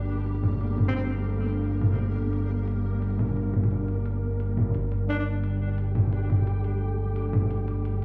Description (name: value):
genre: half-time drum and bass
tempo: 174 BPM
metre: 4/4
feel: swing 57% on 16ths, half-time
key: G minor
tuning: A4 = 439 Hz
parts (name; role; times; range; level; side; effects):
- deep dark ambient pad; sustained chords; 0.0-8.0 s; G3 to D5; -35 LUFS; equal; chorus, built-in reverb, vintage 12-bit sampler grit
- saturated sub bass; bass; 0.0-8.0 s; G1; -29 LUFS; equal; tube saturation
- flickering grainy texture; texture; 0.0-8.0 s; G3 to G4; -40 LUFS; equal; built-in reverb
- organic electronic drum kit; drums; 0.3-8.0 s; hi-hat, toms; -29 LUFS; equal; overdrive, low-pass filter on hats, low-pass filter on toms, low-pass filter on room
- warm alto saxophone; melody; 0.9-1.0, 5.1-5.2 s; C4 to D4; -37 LUFS; equal; vintage 12-bit sampler grit, tape echo
room: light reverb, digital ambience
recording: played on a big sound system in a bare room, stone room reverb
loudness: -27 LUFS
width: mono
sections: 0.0-8.0 A section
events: none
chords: 0.0 Gmadd9